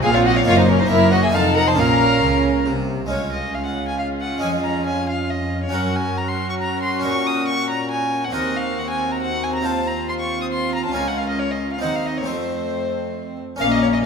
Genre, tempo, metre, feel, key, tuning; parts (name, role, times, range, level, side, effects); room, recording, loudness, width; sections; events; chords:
classical, baroque-style concerto movement with solo episodes; 137 BPM; 3/4; straight; Bb minor, Db major from 3.1 s; A4 = 441 Hz
rich chamber violin section; melody; 0.0-14.0 s; Ab4 to C6; -28 LUFS; left 6 dB
warm violin; melody; 0.0-14.0 s; Bb4 to Eb6; -24 LUFS; left 2 dB
warm chamber violin section; second line; 0.0-14.0 s; C4 to C5; -25 LUFS; left 1 dB
dark chamber viola section; accompaniment; 0.0-14.0 s; A3 to Eb4; -24 LUFS; right 1 dB
harpsichord; accompaniment; 0.0-14.1 s; Db2 to C5; -27 LUFS; right 1 dB
rich chamber cello section; bass; 0.0-14.0 s; Db2 to Db3; -26 LUFS; right 1 dB
rich chamber double bass section; bass; 0.0-3.1, 13.6-14.0 s; F1 to Db2; -25 LUFS; right 3 dB
wet recital hall reverb, RT60 1.6 s; minimal, uncompressed stereo recording; -18 LUFS; side -6 dB against mid
0.0-3.1 A section; 3.1-13.6 B section
0.5 Ebm/Gb; 0.9 Gb7; 1.3 F7; 1.8 Bbm; 3.1 Db; 4.4 Db/F; 5.7 Gb; 7.0 Gb/Bb; 8.3 Cm7b5/Eb; 9.7 F5/Eb; 11.0 Bbm/Db; 11.8 Ebm13; 12.3 F